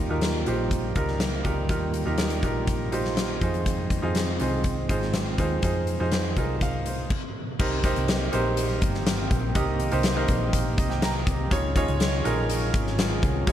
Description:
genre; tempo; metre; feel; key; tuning
piano-driven pop; 122 BPM; 4/4; straight; unclear; A4 = 440 Hz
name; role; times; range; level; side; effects
clear concert grand piano; accompaniment; 0.0-13.5 s; C3 to Bb5; -28 LUFS; right 2 dB; none
warm analog pad; sustained chords; 0.0-13.5 s; Eb3 to G4; -34 LUFS; equal; chorus
hollow-body short-scale fingered electric bass; bass; 0.0-13.5 s; G1 to F2; -28 LUFS; equal; none
huge arena drum kit; drums; 0.2-13.5 s; crash cymbal, hi-hat, kick drum, snare drum; -26 LUFS; left 1 dB; none
room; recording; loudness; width
light reverb, small room ambience; dark, warm production; -23 LUFS; side -11 dB against mid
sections
0.0-7.6 A section; 7.6-13.5 B section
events
stop 7.1-7.6; grand piano fill 10.5-11.5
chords
0.0 Ebadd9; 3.4 Fm7; 7.6 Cm7; 11.5 Dbadd9

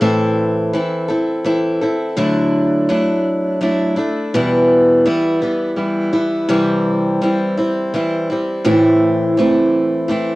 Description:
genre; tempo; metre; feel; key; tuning
acoustic folk duo or small band; 83 BPM; 3/4; straight; unclear; A4 = 440 Hz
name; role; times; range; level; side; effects
picked steel-string acoustic guitar; accompaniment; 0.0-10.4 s; E2 to A4; -14 LUFS; equal; cassette tape
dark upright piano; arpeggios; 8.7-10.4 s; E3 to C4; -16 LUFS; right 3 dB; cassette tape
room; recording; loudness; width
moderate studio reverb, RT60 0.6 s; home recording on cassette; -14 LUFS; side -19 dB against mid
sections
0.0-10.4 A section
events
none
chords
0.0 Am; 2.2 Dadd9; 4.3 Em; 6.5 C; 8.7 Am

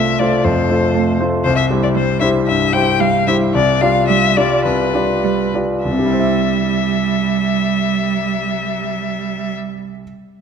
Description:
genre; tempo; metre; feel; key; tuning
quick classical-period movement for piano trio; 95-122 BPM; 4/4; rubato; C major; A4 = 440 Hz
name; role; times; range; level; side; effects
warm violin; melody; 0.0-9.5 s; B4 to G5; -19 LUFS; left 6 dB; none
rich cello; second line; 0.0-9.5 s; G3 to A3; -21 LUFS; right 10 dB; none
clear grand piano; accompaniment; 0.0-10.0 s; C2 to E5; -17 LUFS; left 1 dB; none
room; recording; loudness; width
wet concert hall reverb, RT60 2.0 s; none; -14 LUFS; side -7 dB against mid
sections
0.0-5.8 A section; 5.8-10.4 B section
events
slowing down 0.4-5.8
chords
0.0 F/C; 1.4 C; 3.5 G7/C; 5.8 C

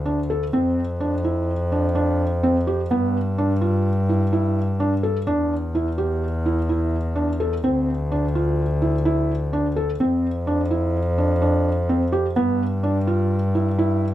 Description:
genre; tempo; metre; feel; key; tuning
contemporary instrumental, chamber music in an uneven meter; 127 BPM; 5/4; straight; unclear; A4 = 438 Hz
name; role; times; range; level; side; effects
rich double bass; bass; 0.0-14.1 s; D2 to G2; -22 LUFS; equal; none
felt-muted upright piano; arpeggios; 0.1-14.0 s; B3 to A4; -22 LUFS; right 1 dB; none
room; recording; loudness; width
light reverb; none; -19 LUFS; side -13 dB against mid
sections
0.0-14.1 A section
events
none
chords
0.0 D5; 0.5 F5; 2.9 N.C.; 5.3 E7(no3); 7.6 N.C.; 10.0 F5; 12.4 G

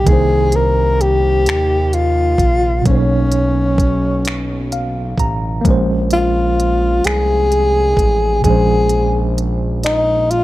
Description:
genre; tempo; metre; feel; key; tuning
slow six-eight R&B; 43 BPM (dotted quarters); 6/8; straight; unclear; A4 = 440 Hz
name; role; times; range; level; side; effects
breathy tenor saxophone; melody; 0.0-10.4 s; C#4 to Bb4; -16 LUFS; left 2 dB; slapback echo
tine electric piano; accompaniment; 0.0-10.4 s; Bb2 to A#5; -20 LUFS; right 1 dB; overdrive, fast stereo tremolo
smooth synth bass; bass; 0.0-10.4 s; A1 to Eb2; -18 LUFS; right 1 dB; none
smooth R&B drum kit; drums; 0.1-10.4 s; finger snaps, hi-hat, kick drum; -17 LUFS; right 1 dB; none
room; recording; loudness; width
little or no reverb; none; -13 LUFS; side -16 dB against mid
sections
0.0-10.4 A section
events
tine electric piano fill 4.3-5.6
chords
0.1 Cm7; 2.9 Bmaj9; 5.6 Bbm9

